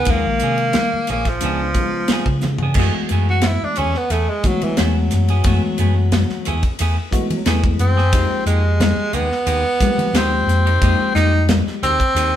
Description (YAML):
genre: electric jazz fusion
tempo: 89 BPM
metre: 4/4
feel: straight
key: unclear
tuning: A4 = 437 Hz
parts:
  - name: breathy tenor saxophone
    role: melody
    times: 0.0-12.4 s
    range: E3 to F#4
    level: -20 LUFS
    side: equal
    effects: none
  - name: clean electric guitar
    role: stabs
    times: 0.0-12.3 s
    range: F3 to Ab4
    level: -28 LUFS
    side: right 4 dB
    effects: none
  - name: hollow-body short-scale fingered electric bass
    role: bass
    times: 0.0-12.3 s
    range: Bb1 to F#3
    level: -19 LUFS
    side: equal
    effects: none
  - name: tine electric piano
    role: accompaniment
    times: 0.1-11.9 s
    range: Db3 to G4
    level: -24 LUFS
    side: left 3 dB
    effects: phaser
  - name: crisp fusion drum kit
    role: drums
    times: 0.1-12.3 s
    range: crash cymbal, hi-hat, kick drum, ride cymbal, snare drum, toms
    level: -22 LUFS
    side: equal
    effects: none
  - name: congas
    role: percussion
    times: 0.1-12.2 s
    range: none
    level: -26 LUFS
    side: left 2 dB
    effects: none
room: moderate stone room reverb, RT60 1.1 s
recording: band playing live in one room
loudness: -15 LUFS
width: side -11 dB against mid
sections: 0.0-2.8 A section; 2.8-12.4 B section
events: drum fill 2.4-2.8; tenor saxophone solo 2.8-12.4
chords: 0.1 Eb9sus4; 1.4 Db7b9; 2.8 F#m11; 8.1 Fm11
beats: | 0.08 0.75 1.43 2.10 | 2.77 3.44 4.11 4.78 | 5.45 6.12 6.80 7.47 | 8.14 8.81 9.48 10.15 | 10.82 11.49 12.16